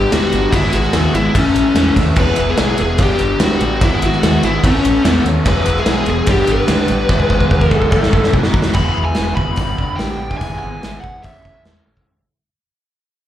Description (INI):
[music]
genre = classic rock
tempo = 146 BPM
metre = 4/4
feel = straight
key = E major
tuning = A4 = 440 Hz
[part]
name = biting lead guitar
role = melody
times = 0.0-11.6 s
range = C#4 to B5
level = -18 LUFS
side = left 2 dB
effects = overdrive, slapback echo
[part]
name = overdriven electric guitar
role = riff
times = 0.0-12.1 s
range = E2 to B4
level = -23 LUFS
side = right 9 dB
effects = slapback echo
[part]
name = raw garage guitar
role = riff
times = 0.0-12.1 s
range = E2 to A4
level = -22 LUFS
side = left 5 dB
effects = overdrive, slapback echo
[part]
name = growling fingered electric bass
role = bass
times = 0.0-12.0 s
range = E1 to E2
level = -20 LUFS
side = equal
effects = overdrive
[part]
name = gated 80s drum kit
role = drums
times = 0.1-12.1 s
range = crash cymbal, hi-hat, kick drum, ride cymbal, snare drum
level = -17 LUFS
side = equal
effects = none
[part]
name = cowbell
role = percussion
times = 2.2-8.4 s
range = none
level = -34 LUFS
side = right 4 dB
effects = none
[sound]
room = light reverb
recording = live gig heard through the venue's PA, club reverb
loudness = -12 LUFS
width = side -11 dB against mid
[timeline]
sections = 0.0-8.8 A section; 8.8-12.1 B section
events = drum fill 7.1-8.8; fade-out 8.8-12.1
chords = 0.0 G; 0.5 E/G#; 1.4 A; 2.2 E; 3.0 G; 3.8 E/G#; 4.6 A; 5.5 E; 6.3 G; 7.1 E/G#; 7.9 A; 8.3 B; 8.8 E; 9.6 G; 10.4 E/G#; 11.2 A